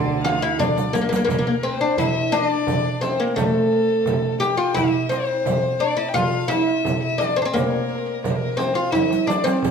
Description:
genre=Arabic maqam ensemble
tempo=86 BPM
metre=3/4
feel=straight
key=D maqam bayati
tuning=A4 = 445 Hz
part: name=oud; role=melody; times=0.0-9.7 s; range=A3 to G4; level=-21 LUFS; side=left 1 dB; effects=tape echo
part: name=dark cello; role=second line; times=0.0-0.9 s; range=D3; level=-27 LUFS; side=right 6 dB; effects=none
part: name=warm violin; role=second line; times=0.0-9.7 s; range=A4 to G5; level=-26 LUFS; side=left 5 dB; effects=none
part: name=clear double bass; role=drone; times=0.0-1.4 s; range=D2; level=-34 LUFS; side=right 1 dB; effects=none
part: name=darbuka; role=percussion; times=0.2-9.7 s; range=none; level=-28 LUFS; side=right 4 dB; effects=none
part: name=frame drum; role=percussion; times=0.2-9.7 s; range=none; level=-28 LUFS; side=right 4 dB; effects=none
part: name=riq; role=percussion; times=0.3-9.7 s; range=none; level=-30 LUFS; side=right 3 dB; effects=none
room=wet stone room reverb, RT60 1.0 s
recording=band playing live in one room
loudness=-18 LUFS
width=side -6 dB against mid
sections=0.0-1.3 A section; 1.3-9.7 B section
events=drum fill 0.6-1.3, 8.9-9.6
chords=none

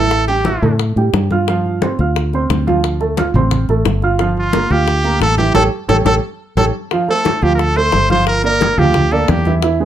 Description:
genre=latin, salsa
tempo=177 BPM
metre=4/4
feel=straight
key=D minor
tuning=A4 = 440 Hz
part: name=brilliant trumpet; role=melody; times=0.0-0.8, 4.4-9.5 s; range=F4 to C5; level=-17 LUFS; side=equal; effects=plate reverb
part: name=dark upright piano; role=accompaniment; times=0.0-9.8 s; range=E3 to F6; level=-18 LUFS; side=right 4 dB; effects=none
part: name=fingered electric bass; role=bass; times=0.0-9.8 s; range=G1 to A2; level=-17 LUFS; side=equal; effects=none
part: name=bongos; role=percussion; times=0.1-9.8 s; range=none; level=-23 LUFS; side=left 9 dB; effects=none
part: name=congas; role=percussion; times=0.1-9.8 s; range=none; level=-21 LUFS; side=left 1 dB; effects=none
room=light reverb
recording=dark, warm production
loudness=-12 LUFS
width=side -11 dB against mid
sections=0.0-6.9 A section; 6.9-9.8 B section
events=band accent 5.6-6.9; drum fill 5.9-6.9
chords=0.1 A5; 1.5 G7sus4; 2.8 Dm7; 4.2 Gm7; 5.6 A7; 6.9 Dm7; 8.3 Gm7

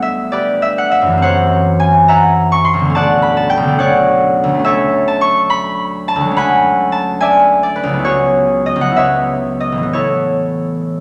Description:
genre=classical, solo harp piece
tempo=60-72 BPM (dotted quarters)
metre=6/8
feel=rubato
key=unclear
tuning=A4 = 438 Hz
part: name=concert harp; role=solo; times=0.0-11.0 s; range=A1 to C#6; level=-14 LUFS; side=equal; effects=none
room=wet recital hall reverb, RT60 1.8 s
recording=none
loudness=-14 LUFS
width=mono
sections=0.0-11.0 A section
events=none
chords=0.0 Em7/D; 1.2 F#7#11; 2.9 Bm9; 4.7 Dmaj9; 6.4 E13/D; 8.1 C#m11; 9.9 Aadd9

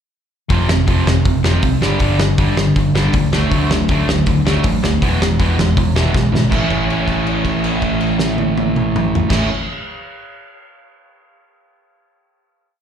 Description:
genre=punk rock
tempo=160 BPM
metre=4/4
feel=straight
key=A major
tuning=A4 = 439 Hz
part: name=distorted electric guitar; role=riff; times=0.5-9.5 s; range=F2 to E4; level=-20 LUFS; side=right 9 dB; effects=distortion, slapback echo
part: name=sludgy distorted guitar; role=riff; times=0.5-9.5 s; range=E2 to D4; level=-20 LUFS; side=left 9 dB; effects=overdrive, slapback echo
part: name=overdriven picked electric bass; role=bass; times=0.5-9.5 s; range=E1 to D2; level=-19 LUFS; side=equal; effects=none
part: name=loose indie drum kit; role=drums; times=0.5-9.4 s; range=crash cymbal, hi-hat, kick drum, snare drum, toms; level=-19 LUFS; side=equal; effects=none
room=small room ambience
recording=live gig heard through the venue's PA, club reverb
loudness=-13 LUFS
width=side -8 dB against mid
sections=0.5-6.5 verse; 6.5-9.5 final chord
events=drum fill 6.1-6.5; held note 6.5-9.3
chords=0.5 F5; 1.8 G5; 3.3 D; 5.0 E; 6.5 A

